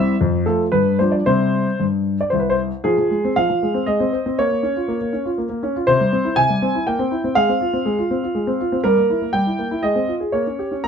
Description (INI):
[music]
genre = classical-period piano sonatina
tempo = 120 BPM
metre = 3/4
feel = rubato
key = F minor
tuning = A4 = 440 Hz
[part]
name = warm grand piano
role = solo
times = 0.0-10.9 s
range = C2 to Bb5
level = -17 LUFS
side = equal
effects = none
[sound]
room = light reverb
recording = dark, warm production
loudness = -17 LUFS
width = side -7 dB against mid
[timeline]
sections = 0.0-2.9 A section; 2.9-10.9 B section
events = none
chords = 0.2 F; 0.7 G7; 1.3 C5; 2.9 Fm; 3.9 Ab; 4.4 Bbm; 5.9 C; 6.9 C7/Bb; 7.4 Fm/Ab; 8.8 Edim/G; 9.8 Fm/Ab; 10.3 Gdim/Bb